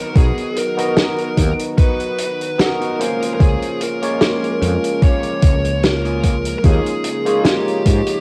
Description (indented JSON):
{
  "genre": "vaporwave",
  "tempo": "74 BPM",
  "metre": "4/4",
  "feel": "swing 55% on 16ths",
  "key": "unclear",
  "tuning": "A4 = 440 Hz",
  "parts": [
    { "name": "high-gain lead guitar", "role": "melody", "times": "0.0-8.2 s", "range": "G4 to Db5", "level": "-24 LUFS", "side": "equal", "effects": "distortion, cassette tape, tape echo" },
    { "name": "lush unison pad", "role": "sustained chords", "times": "0.0-8.2 s", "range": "Db3 to F#4", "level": "-32 LUFS", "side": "equal", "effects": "chorus, cassette tape" },
    { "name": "electric guitar at the edge of break-up", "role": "riff", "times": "0.0-7.8 s", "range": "Bb3 to B4", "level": "-34 LUFS", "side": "equal", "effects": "lush chorus, cassette tape" },
    { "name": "barky tine electric piano", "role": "accompaniment", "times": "0.1-8.2 s", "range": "Ab3 to A#5", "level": "-25 LUFS", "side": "equal", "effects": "lush chorus, cassette tape" },
    { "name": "woody fretless electric bass", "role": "bass", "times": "0.2-8.0 s", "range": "B1 to Ab2", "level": "-22 LUFS", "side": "equal", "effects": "lush chorus" },
    { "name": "electronic kick drum", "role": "drums", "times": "0.2-8.0 s", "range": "none", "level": "-16 LUFS", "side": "equal", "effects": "overdrive, cassette tape" },
    { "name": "loose indie drum kit", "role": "drums", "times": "0.2-8.2 s", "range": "hi-hat, snare drum", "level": "-23 LUFS", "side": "equal", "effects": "cassette tape" }
  ],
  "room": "moderate spring reverb, RT60 2.5 s",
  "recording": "home recording on cassette",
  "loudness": "-17 LUFS",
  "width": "mono",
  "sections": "0.0-8.2 A section",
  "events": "none",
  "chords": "0.0 Bmaj7; 3.0 Bbm7/Db; 6.6 Eb9sus4"
}